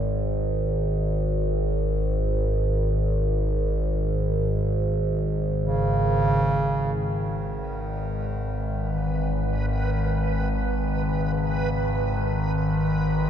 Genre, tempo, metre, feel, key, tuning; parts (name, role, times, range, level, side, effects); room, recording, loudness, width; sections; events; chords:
dark ambient drone; free time; G# minor; A4 = 439 Hz
overtone-sweeping drone; drone; 0.0-13.3 s; G#1; -23 LUFS; equal; chorus, built-in reverb
warm bass clarinet; melody; 5.6-13.3 s; C#3 to E3; -28 LUFS; right 2 dB; tape echo
backwards swelling texture; texture; 7.0-13.3 s; B4; -32 LUFS; right 5 dB; built-in reverb, shimmer reverb
wet cathedral reverb, RT60 6.4 s; dark, warm production; -22 LUFS; side -9 dB against mid
0.0-7.0 A section; 7.0-13.3 B section
fade-in on bass clarinet 7.0-13.3
0.0 N.C.; 7.0 G#m